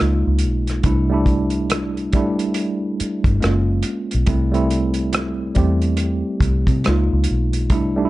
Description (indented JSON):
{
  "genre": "R&B, neo-soul",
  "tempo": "70 BPM",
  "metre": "4/4",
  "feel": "swing 61% on 16ths",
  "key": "C major",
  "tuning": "A4 = 439 Hz",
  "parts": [
    { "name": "tine electric piano", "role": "accompaniment", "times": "0.0-8.1 s", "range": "G3 to G4", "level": "-21 LUFS", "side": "right 1 dB", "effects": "medium stereo tremolo" },
    { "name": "vintage muted fingered electric bass", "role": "bass", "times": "0.0-8.1 s", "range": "F#1 to C3", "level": "-20 LUFS", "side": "equal", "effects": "none" },
    { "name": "warm soul drum kit", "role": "drums", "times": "0.0-7.9 s", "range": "hi-hat, kick drum, rim click", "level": "-21 LUFS", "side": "equal", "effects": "none" }
  ],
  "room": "little or no reverb",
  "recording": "dark, warm production, nothing above 10.3 kHz",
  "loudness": "-17 LUFS",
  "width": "side -17 dB against mid",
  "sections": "0.0-8.1 A section",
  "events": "none",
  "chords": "0.0 Db69; 0.8 C69; 3.4 F#maj9; 4.3 C6; 6.8 Db69",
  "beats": "| 0.84 1.70 2.55 3.41 | 4.27 5.12 5.98 6.84 | 7.70"
}